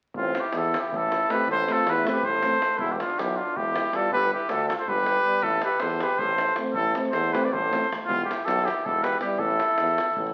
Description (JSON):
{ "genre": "balkan folk, Balkan brass band", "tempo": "318 BPM (eighths)", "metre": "7/8", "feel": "straight", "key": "A minor", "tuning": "A4 = 442 Hz", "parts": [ { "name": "davul", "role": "percussion", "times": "0.1-10.3 s", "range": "none", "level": "-37 LUFS", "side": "equal", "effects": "none" }, { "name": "clear trumpet", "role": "melody", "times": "0.2-10.3 s", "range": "E4 to D5", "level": "-27 LUFS", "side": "equal", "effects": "none" }, { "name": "mellow flugelhorn", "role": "second line", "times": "0.2-10.3 s", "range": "B3 to B4", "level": "-33 LUFS", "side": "equal", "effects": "none" }, { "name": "clear tuba", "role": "bass", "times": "0.2-10.3 s", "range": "E1 to E2", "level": "-34 LUFS", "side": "equal", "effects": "none" }, { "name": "mellow euphonium", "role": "accompaniment", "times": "1.3-9.4 s", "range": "B3 to C4", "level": "-36 LUFS", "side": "equal", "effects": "none" }, { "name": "warm euphonium", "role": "accompaniment", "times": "1.3-9.4 s", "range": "G3 to A3", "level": "-36 LUFS", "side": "equal", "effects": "none" } ], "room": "wet large studio reverb, RT60 1.3 s", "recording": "very old 78 rpm record, vinyl crackle", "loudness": "-25 LUFS", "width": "mono", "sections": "0.2-10.3 A section", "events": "none", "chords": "0.2 Am; 2.8 Em; 4.1 G; 5.4 Am; 8.1 Em; 9.4 A5", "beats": "| 0.15 0.34 0.53 0.72 0.91 1.10 1.28 | 1.47 1.66 1.85 2.04 2.23 2.42 2.61 | 2.79 2.98 3.17 3.36 3.55 3.74 3.93 | 4.11 4.30 4.49 4.68 4.87 5.06 5.25 | 5.43 5.62 5.81 6.00 6.19 6.38 6.57 | 6.76 6.95 7.13 7.32 7.51 7.70 7.89 | 8.08 8.27 8.46 8.64 8.83 9.02 9.21 | 9.40 9.59 9.78 9.97 10.16" }